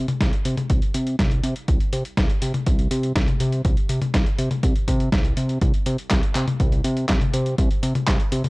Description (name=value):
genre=italo disco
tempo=122 BPM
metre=4/4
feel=straight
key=unclear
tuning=A4 = 440 Hz
part: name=fat analog bass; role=bass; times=0.0-8.4 s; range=C2 to C3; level=-24 LUFS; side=equal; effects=none
part: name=dusty soul sampler-style drum kit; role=drums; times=0.1-8.5 s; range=handclaps, hi-hat, snare drum, toms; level=-25 LUFS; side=left 1 dB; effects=overdrive
part: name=electronic kick drum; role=drums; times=0.2-8.2 s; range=none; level=-21 LUFS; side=equal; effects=none
room=little or no reverb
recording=dry, gritty hardware recording, cassette tape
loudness=-19 LUFS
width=side -24 dB against mid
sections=0.0-8.5 A section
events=none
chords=none